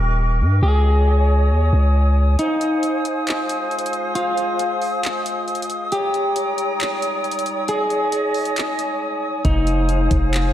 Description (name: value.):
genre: hip hop, atmospheric cloud-rap.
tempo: 136 BPM.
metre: 4/4.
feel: half-time.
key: F minor.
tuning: A4 = 445 Hz.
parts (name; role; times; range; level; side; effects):
semi-hollow electric guitar; melody; 0.0-10.5 s; Eb4 to Ab4; -23 LUFS; left 1 dB; analog delay.
small flute group; sustained chords; 0.0-10.5 s; Bb4 to Eb6; -24 LUFS; right 1 dB; sidechain pumping.
long sustained 808-style bass; bass; 0.0-2.4, 9.4-10.5 s; Eb1 to G2; -16 LUFS; equal; none.
smooth R&B drum kit; drums; 2.4-10.4 s; handclaps, hi-hat, kick drum; -25 LUFS; equal; none.
drifting glass-harmonics texture; texture; 3.0-10.5 s; G3 to Eb5; -32 LUFS; left 2 dB; chorus, built-in reverb.
room: moderate lush hall reverb, RT60 1.8 s.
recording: dreamy mix soaked in reverb.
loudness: -17 LUFS.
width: side -12 dB against mid.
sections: 0.0-10.5 A section.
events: break 2.4-9.4; drums muted 9.0-9.4.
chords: 0.0 Eb7; 0.6 Dbsus2; 2.4 Fm7; 5.9 Eb7; 7.7 Dbsus2; 9.4 Fm7.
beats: 0.18 | 0.62 1.06 1.51 1.95 | 2.39 2.83 3.27 3.71 | 4.15 4.59 5.04 5.48 | 5.92 6.36 6.80 7.24 | 7.68 8.12 8.56 9.01 | 9.45 9.89 10.33.